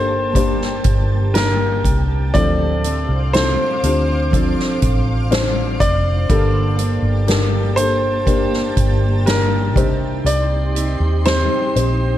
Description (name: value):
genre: pop ballad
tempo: 60 BPM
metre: 4/4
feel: straight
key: G minor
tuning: A4 = 445 Hz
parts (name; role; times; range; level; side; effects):
- clear baby grand piano; melody; 0.0-12.2 s; Bb4 to D5; -22 LUFS; equal; digital delay
- felt-muted upright piano; accompaniment; 0.0-12.2 s; G2 to C5; -24 LUFS; left 5 dB; none
- shimmering ambient pad; sustained chords; 0.0-12.2 s; Bb3 to D6; -26 LUFS; equal; chorus, built-in reverb
- picked steel-string acoustic guitar; arpeggios; 0.0-12.2 s; G2 to A4; -28 LUFS; right 5 dB; none
- vintage muted fingered electric bass; bass; 0.0-12.2 s; F1 to Eb2; -19 LUFS; equal; none
- soft-mallet drum kit; drums; 0.4-12.0 s; hi-hat, kick drum, snare drum; -20 LUFS; equal; none
room: small room reverb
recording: dark, warm production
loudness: -15 LUFS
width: side -12 dB against mid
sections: 0.0-12.2 A section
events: none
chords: 0.0 Gmadd9; 2.3 Dm7; 6.3 Gmadd9; 9.8 Cm